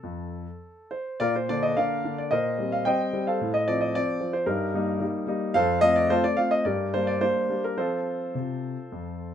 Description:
classical-period piano sonatina; 110 BPM; 4/4; uneven beats, rubato; A4 = 440 Hz
warm concert grand piano; solo; 0.0-9.3 s; F2 to G5; -24 LUFS; equal
light reverb; minimal, uncompressed stereo recording; -23 LUFS; side -9 dB against mid
0.0-1.2 A section; 1.2-9.3 B section
0.0 F; 1.2 Bb; 2.3 Cm7/Bb; 3.4 F/A; 4.5 Eb/G; 5.6 F; 6.6 Gm; 7.8 F

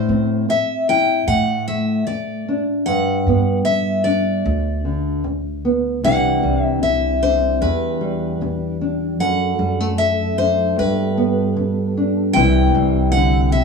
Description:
acoustic folk duo or small band; 76 BPM; 4/4; straight; D mixolydian; A4 = 437 Hz
picked steel-string acoustic guitar; melody; 0.0-13.6 s; B4 to G5; -20 LUFS; left 2 dB
nylon-string guitar; accompaniment; 0.0-13.6 s; E2 to E4; -20 LUFS; left 1 dB
upright bass; bass; 0.0-13.6 s; C2 to A2; -22 LUFS; right 2 dB
mellow tonewheel organ; sustained chords; 6.0-13.6 s; E3 to E5; -27 LUFS; left 1 dB; slow rotary speaker
moderate studio reverb, RT60 0.6 s; band playing live in one room, studio ambience; -16 LUFS; side -5 dB against mid
0.0-13.6 A section
0.0 Am; 1.3 D5/A; 2.9 G; 6.0 Cadd9; 7.6 Em7; 9.2 D/F#; 10.8 Gadd9; 12.4 C

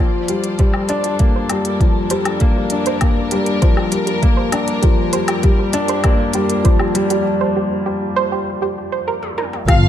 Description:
piano and strings electronica; 99 BPM; 4/4; straight; G minor; A4 = 440 Hz
dark studio string section; sustained chords; 0.0-7.3 s; G3 to D5; -26 LUFS; equal; sidechain pumping
soft round pluck; arpeggios; 0.0-9.7 s; G4 to C5; -24 LUFS; right 5 dB; chorus, vintage 12-bit sampler grit, sidechain pumping, ping-pong delay
warm upright piano; riff; 0.0-9.9 s; F3 to D4; -18 LUFS; left 2 dB; ping-pong delay
organic electronic drum kit; drums; 0.3-9.8 s; hi-hat, toms, woodblock; -25 LUFS; left 2 dB; high-pass filter on hats, high-pass filter on perc, high-pass filter on toms, high-pass filter on room
electronic kick drum; drums; 0.6-9.8 s; -14 LUFS; equal
dark studio violin section; melody; 9.7-9.9 s; F5; -16 LUFS; left 3 dB
warm chamber double bass section; bass; 9.7-9.9 s; G1; -13 LUFS; equal; sidechain pumping
moderate lush hall reverb, RT60 2.0 s; -15 LUFS; side -10 dB against mid
0.0-9.7 A section
build-up 0.0-9.7; filter sweep on synth arpeggio sound 0.0-9.7; break 7.3-9.7; drum fill 9.2-9.7
0.0 Gm7

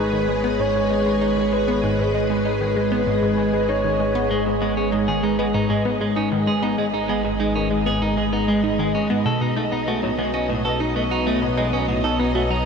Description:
ambient, sequencer-driven space music; 97 BPM; 4/4; straight; A4 = 440 Hz
breathy flute-like synth lead; melody; 0.0-4.3 s; B4 to C#5; -26 LUFS; equal; chorus, shimmer reverb, tape echo
string machine, full ensemble; sustained chords; 0.0-12.7 s; G#3 to D#5; -22 LUFS; equal; ensemble chorus, shimmer reverb
analog pluck; riff; 0.0-12.7 s; G#2 to F#4; -25 LUFS; equal; chorus, phaser, vintage 12-bit sampler grit, shimmer reverb, tape echo
fat analog bass; bass; 0.0-12.7 s; G#1 to B1; -29 LUFS; equal
wind-like tuned noise texture; texture; 0.0-12.7 s; C#5 to D#5; -34 LUFS; left 1 dB; built-in reverb, shimmer reverb
clean electric guitar; arpeggios; 4.3-12.7 s; G#2 to A4; -25 LUFS; right 2 dB; auto-pan, shimmer reverb, tape echo
wet huge ambient reverb, RT60 7.5 s; -18 LUFS; side -6 dB against mid
0.0-12.7 A section
fade-in on analog synth bass 0.0-12.7
0.0 G#m; 9.3 Badd9

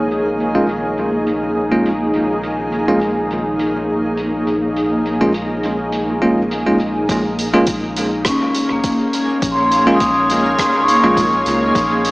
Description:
ambient dub; 103 BPM; 4/4; swing 54% on 16ths; Bb minor; A4 = 440 Hz
granular cloud pad; sustained chords; 0.0-12.1 s; Bb3 to F5; -18 LUFS; equal; built-in reverb, vintage 12-bit sampler grit
round analog bass; bass; 0.0-12.1 s; F1 to Db2; -29 LUFS; equal
soft-mallet drum kit; drums; 0.1-12.1 s; hi-hat, rim click; -26 LUFS; right 1 dB; low-pass filter on hats, low-pass filter on snare, low-pass filter on room, dub echo
bell-like tine electric piano; stabs; 0.6-11.2 s; Ab3 to F4; -19 LUFS; equal; fast stereo tremolo, low-pass filter, dub echo
electronic kick drum; drums; 7.1-11.9 s; -24 LUFS; equal
vibraphone with medium mallets; arpeggios; 8.3-12.1 s; Bb3 to Eb6; -15 LUFS; left 1 dB; dub echo
wet concert hall reverb, RT60 2.4 s; small speaker sound; -14 LUFS; side -22 dB against mid
0.0-7.1 A section; 7.1-12.1 B section
0.0 Bbm7

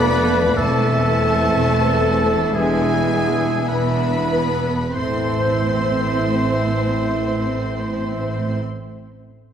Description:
classical, slow romantic movement for symphony orchestra; 44-65 BPM; 4/4; rubato; A minor; A4 = 437 Hz
warm symphonic violin section; melody; 0.0-8.6 s; G#5 to C6; -28 LUFS; left 5 dB
clear oboe; second line; 0.0-8.6 s; G#4 to C5; -26 LUFS; right 1 dB
large flute ensemble; second line; 0.0-8.6 s; G#4 to C5; -27 LUFS; equal
rich symphonic violin section; second line; 0.0-8.6 s; B3 to A4; -30 LUFS; left 4 dB
warm symphonic viola section; accompaniment; 0.0-8.6 s; G#3 to C4; -26 LUFS; right 1 dB
mellow French horn section; sustained chords; 0.0-8.6 s; B3 to A4; -26 LUFS; left 3 dB
warm trombone section; sustained chords; 0.0-8.6 s; E3 to B3; -29 LUFS; right 2 dB
concert harp; arpeggios; 0.0-8.9 s; E2 to E5; -31 LUFS; left 7 dB
mellow trumpet section; stabs; 0.0-8.6 s; D5 to E5; -27 LUFS; right 3 dB
rich symphonic cello section; bass; 0.0-8.6 s; E2 to A2; -27 LUFS; right 2 dB
warm symphonic double bass section; bass; 0.0-8.6 s; E1 to A1; -25 LUFS; right 3 dB
timpani; percussion; 0.6-8.6 s; E2 to A2; -32 LUFS; left 1 dB
wet scoring stage reverb, RT60 1.9 s; -17 LUFS; side -8 dB against mid
0.0-5.0 A section; 5.0-9.5 B section
slowing down 0.0-5.0
0.0 Dm/F; 0.6 Am/E; 2.5 E7; 5.0 Am

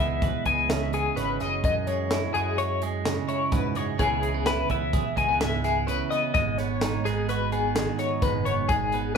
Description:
math rock and midwest emo; 127 BPM; 5/4; straight; A4 = 440 Hz
twelve-string electric guitar; accompaniment; 0.0-9.2 s; F#2 to B4; -28 LUFS; right 8 dB; spring reverb
twelve-string electric guitar; arpeggios; 0.0-9.2 s; G#4 to G#5; -27 LUFS; left 7 dB; tremolo
picked electric bass; bass; 0.0-9.2 s; F#1 to G#2; -32 LUFS; equal
crisp fusion drum kit; drums; 0.2-9.0 s; hi-hat, kick drum, snare drum; -29 LUFS; equal
moderate large studio reverb, RT60 0.8 s; band playing live in one room; -23 LUFS; side -6 dB against mid
0.0-9.2 A section
0.0 F#9sus4; 4.0 C#m7; 6.3 G#m7

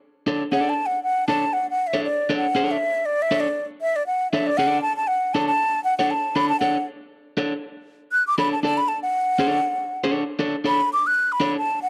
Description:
funk; 118 BPM; 4/4; swing 56% on 16ths; A4 = 440 Hz
electric guitar at the edge of break-up; accompaniment; 0.3-11.6 s; D4 to D5; -27 LUFS; equal; spring reverb
breathy concert flute; melody; 0.5-11.9 s; D5 to F#6; -23 LUFS; equal
little or no reverb; dry, close 1970s-style studio recording; -22 LUFS; mono
0.0-11.9 A section
flute solo 0.0-11.9
0.0 D5

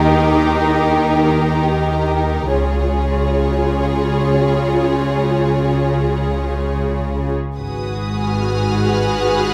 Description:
cinematic, suspense film score; free time; G# dorian; A4 = 439 Hz
warm symphonic violin section; melody; 0.0-9.5 s; A#4 to C#5; -26 LUFS; equal
warm symphonic violin section; second line; 0.0-9.5 s; G4 to G#4; -24 LUFS; equal
dark symphonic viola section; accompaniment; 0.0-9.5 s; D#4 to F#4; -24 LUFS; equal
dark symphonic double bass section; bass; 0.0-9.5 s; G#1 to D#2; -23 LUFS; equal
warm symphonic cello section; bass; 0.0-9.5 s; G#2 to D#3; -23 LUFS; equal
warm symphonic violin section; texture; 0.0-2.2, 7.6-9.5 s; G5 to F#6; -31 LUFS; equal
light reverb; -17 LUFS; mono
0.0-7.6 A section; 7.6-9.5 B section
0.0 D#; 2.5 C#; 7.6 G#m7

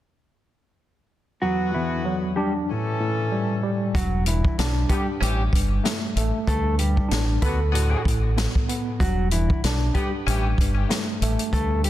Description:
hip hop, boom-bap hip-hop; 95 BPM; 4/4; swing 56% on 16ths; E minor; A4 = 440 Hz
mellow electric guitar; melody; 1.4-11.9 s; E3 to B4; -28 LUFS; equal; high-pass filter, low-pass filter, ping-pong delay
tine electric piano; accompaniment; 1.4-11.9 s; E2 to A4; -27 LUFS; equal; overdrive, fast stereo tremolo, cassette tape, high-pass filter, low-pass filter
warm horn section; stabs; 1.4-10.5 s; D3 to A4; -31 LUFS; left 2 dB; high-pass filter, low-pass filter, ping-pong delay
deep dub fingered electric bass; bass; 3.9-11.9 s; E1 to D2; -23 LUFS; equal
vintage drum kit; drums; 3.9-11.9 s; hi-hat, kick drum, snare drum; -25 LUFS; equal
light reverb, studio reverb; dense, heavily limited modern master; -20 LUFS; side -13 dB against mid
1.4-3.9 A section; 3.9-11.9 B section
1.4 Em9; 2.7 A7; 3.9 Em9; 5.2 A7; 6.5 Dsus4; 7.4 Bm7; 9.0 Em9; 10.3 A7

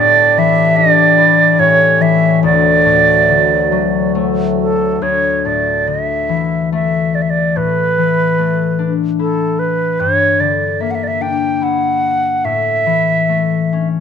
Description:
celtic folk, Celtic slow air; 68-75 BPM; 3/4; rubato; D major; A4 = 440 Hz
bright wooden flute; melody; 0.0-13.9 s; A4 to G5; -13 LUFS; right 3 dB
concert harp; accompaniment; 0.0-14.0 s; D2 to E4; -16 LUFS; left 8 dB
pedal harmonium; sustained chords; 0.0-5.0 s; D2 to D4; -20 LUFS; right 12 dB
light reverb, small room reverb; 1960s-style stereo with parts hard left and right; -11 LUFS; side -7 dB against mid
0.0-5.0 A section; 5.0-14.0 A section
0.0 A7sus4; 1.6 A7; 2.4 D; 5.0 Dsus2; 7.6 Asus4; 10.0 Gm6; 12.4 A

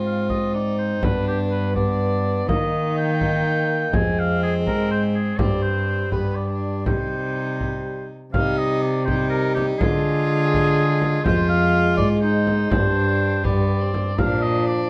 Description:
classical, renaissance-style consort dance; 82 BPM (dotted quarters); 6/8; straight; C minor; A4 = 440 Hz
rich violin; second line; 0.0-14.9 s; B3 to F4; -32 LUFS; equal
dark bassoon; accompaniment; 0.0-14.9 s; F3 to C4; -28 LUFS; equal
warm cello; bass; 0.0-14.9 s; F2 to Eb3; -25 LUFS; equal
clear oboe; melody; 0.1-14.9 s; G4 to Ab5; -28 LUFS; equal
frame drum; percussion; 0.3-14.4 s; -28 LUFS; equal
light reverb; close, detailed microphones; -21 LUFS; mono
0.0-8.3 A section; 8.3-14.9 B section
0.0 Fm/Ab; 1.0 G; 2.5 Eb; 3.9 Fm; 5.4 Gsus4; 6.9 Cm; 9.8 Ddim; 11.3 Fm; 12.7 Gsus4; 14.2 Bb

